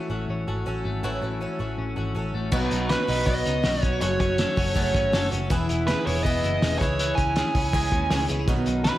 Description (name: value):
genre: jangly indie pop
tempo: 161 BPM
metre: 4/4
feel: straight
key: B mixolydian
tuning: A4 = 440 Hz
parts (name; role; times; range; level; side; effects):
- picked twelve-string acoustic guitar; accompaniment; 0.0-9.0 s; F#2 to A4; -30 LUFS; right 3 dB; none
- twelve-string electric guitar; arpeggios; 0.0-9.0 s; D#3 to A4; -30 LUFS; left 5 dB; harmonic tremolo
- vintage muted picked electric bass; bass; 0.1-8.9 s; E1 to D#2; -28 LUFS; equal; none
- cloth-damped thuddy drum kit; drums; 2.5-8.9 s; crash cymbal, hi-hat, kick drum, snare drum; -26 LUFS; equal; none
- nasal lead guitar with a parked wah; melody; 2.9-9.0 s; B4 to G#5; -27 LUFS; right 2 dB; overdrive
room: light reverb, studio reverb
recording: none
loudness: -22 LUFS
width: side -14 dB against mid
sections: 0.0-2.5 A section; 2.5-9.0 B section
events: none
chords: 0.0 F#m7; 2.5 B; 4.0 F#m; 5.5 E; 6.8 C#m; 8.5 B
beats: 0.28 0.66 | 1.03 1.41 1.78 2.15 | 2.53 2.90 3.27 3.65 | 4.02 4.39 4.76 5.13 | 5.51 5.88 6.25 6.62 | 6.99 7.36 7.74 8.11 | 8.48 8.85